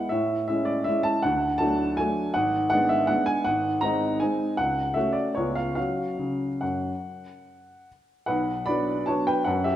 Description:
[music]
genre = classical, piano waltz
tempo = 139-167 BPM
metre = 3/4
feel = rubato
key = F# minor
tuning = A4 = 441 Hz
[part]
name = warm upright piano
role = solo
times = 0.0-9.8 s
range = G#1 to B5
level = -23 LUFS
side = equal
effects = none
[sound]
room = wet recital hall reverb, RT60 1.7 s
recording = minimal, uncompressed stereo recording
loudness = -23 LUFS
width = side -12 dB against mid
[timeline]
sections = 0.0-8.3 A section; 8.3-9.8 B section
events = none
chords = 0.1 Amaj7; 1.2 D; 2.4 G#m7b5; 3.5 G#7; 4.6 F#m/C#; 5.4 C#7; 5.8 F#5; 8.3 Bm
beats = | 0.12 0.49 0.87 | 1.24 1.60 1.98 | 2.35 2.72 3.10 | 3.47 3.83 4.21 | 4.58 4.96 5.36 | 5.77 6.19 6.62 | 7.03 7.45 7.87 | 8.28 8.68 9.08 | 9.47

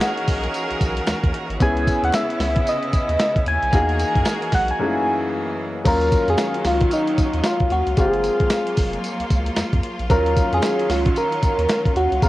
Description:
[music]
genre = R&B, new jack swing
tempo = 113 BPM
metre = 4/4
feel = swing 60% on 16ths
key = unclear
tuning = A4 = 440 Hz
[part]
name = soft struck synth lead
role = melody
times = 0.0-12.3 s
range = Eb4 to G#5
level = -21 LUFS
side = equal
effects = chorus, cassette tape
[part]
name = clear concert grand piano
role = accompaniment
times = 0.0-12.3 s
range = F#2 to G#4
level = -25 LUFS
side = left 2 dB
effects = cassette tape
[part]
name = bright studio string section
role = sustained chords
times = 0.0-12.3 s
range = C#3 to A#4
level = -28 LUFS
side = right 1 dB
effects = cassette tape
[part]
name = dusty soul sampler-style drum kit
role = drums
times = 0.0-12.3 s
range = crash cymbal, hi-hat, kick drum, snare drum, tambourine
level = -21 LUFS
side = equal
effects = vintage 12-bit sampler grit
[part]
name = group handclap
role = percussion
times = 0.0-11.8 s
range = none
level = -38 LUFS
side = right 2 dB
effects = none
[part]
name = round analog bass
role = bass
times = 0.3-12.3 s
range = F1 to F#2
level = -25 LUFS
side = equal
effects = none
[sound]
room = little or no reverb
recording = home recording on cassette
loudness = -18 LUFS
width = side -16 dB against mid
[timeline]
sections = 0.0-5.9 A section; 5.9-12.3 A section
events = break 4.8-5.9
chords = 0.0 Emaj9#11; 1.6 C#m9; 3.7 Emaj9#11; 4.8 F#13; 5.9 Ebm9; 8.0 Gbmaj9#11; 10.1 Ebm9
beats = 0.01 0.54 1.07 | 1.61 2.14 2.67 3.20 | 3.73 4.26 4.79 5.32 | 5.85 6.38 6.92 7.45 | 7.98 8.51 9.04 9.57 | 10.10 10.63 11.16 11.69 | 12.22

